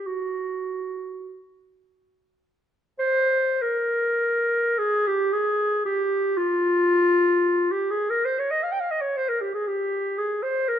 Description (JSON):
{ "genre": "classical, free, expressive piece for unaccompanied clarinet", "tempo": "32-60 BPM", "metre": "3/4", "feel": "rubato", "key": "Bb dorian", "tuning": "A4 = 440 Hz", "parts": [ { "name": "mellow clarinet", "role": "solo", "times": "0.0-10.8 s", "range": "F4 to G5", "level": "-21 LUFS", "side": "equal", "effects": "none" } ], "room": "moderate scoring stage reverb, RT60 1.7 s", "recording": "close, detailed microphones", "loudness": "-21 LUFS", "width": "side -9 dB against mid", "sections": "0.0-3.0 A section; 3.0-10.8 A section", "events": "none", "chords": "none" }